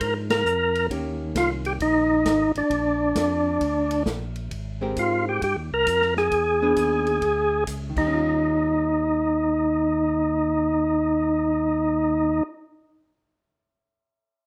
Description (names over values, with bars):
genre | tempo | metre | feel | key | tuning
soul jazz organ trio | 133 BPM | 4/4 | swing 66% on 8ths | Eb mixolydian | A4 = 440 Hz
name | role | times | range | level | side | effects
percussive tonewheel organ | melody | 0.0-12.4 s | D4 to Bb4 | -23 LUFS | equal | overdrive, fast rotary speaker
archtop guitar, miked and amplified | accompaniment | 0.0-12.6 s | Eb3 to Bb4 | -33 LUFS | equal | none
tonewheel organ | bass | 0.0-12.4 s | Ab1 to Ab2 | -33 LUFS | equal | overdrive, chorus vibrato, slow rotary speaker
swinging big-band drum kit | drums | 0.0-8.0 s | crash cymbal, hi-hat, kick drum, ride cymbal, snare drum | -35 LUFS | equal | none
room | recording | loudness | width
wet studio reverb, RT60 0.5 s | rough home demo mix | -23 LUFS | mono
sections
0.0-4.5 A section; 4.5-8.1 B section; 8.1-11.7 C section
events
band accent 0.2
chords
0.0 Bb7; 0.9 Eb7; 2.7 Bb; 4.5 Abmaj9; 6.3 E7; 7.9 Eb; 8.1 Eb9